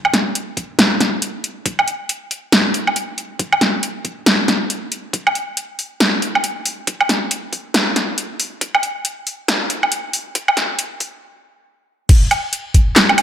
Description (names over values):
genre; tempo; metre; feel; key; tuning
dubstep; 138 BPM; 4/4; swing 60% on 16ths, half-time; none; none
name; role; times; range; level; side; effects
deep house drum kit; drums; 0.0-13.2 s; crash cymbal, handclaps, hi-hat, snare drum, woodblock; -15 LUFS; equal; overdrive
electronic kick drum; drums; 0.6-12.8 s; none; -14 LUFS; equal; high-pass filter on kick, high-pass filter on room
room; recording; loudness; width
moderate echo chamber reverb, RT60 2.0 s; high-pass filter; -16 LUFS; side -10 dB against mid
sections
0.0-12.1 A section; 12.1-13.2 B section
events
build-up 0.0-12.1; stop 11.2-12.1; drop 12.1-13.2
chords
none